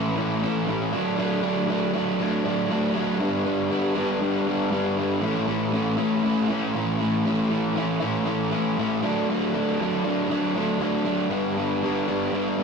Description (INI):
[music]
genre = rock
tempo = 118 BPM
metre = 4/4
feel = straight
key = A mixolydian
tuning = A4 = 440 Hz
[part]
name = overdriven semi-hollow guitar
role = solo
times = 0.0-12.6 s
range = G2 to E4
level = -22 LUFS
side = equal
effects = none
[sound]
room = wet booth ambience, RT60 0.3 s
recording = rough rehearsal-room recording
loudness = -22 LUFS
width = side -5 dB against mid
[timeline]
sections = 0.0-5.2 A section; 5.2-12.6 B section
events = none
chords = 0.0 A; 0.9 D; 3.2 G; 5.2 A; 9.0 D; 11.3 G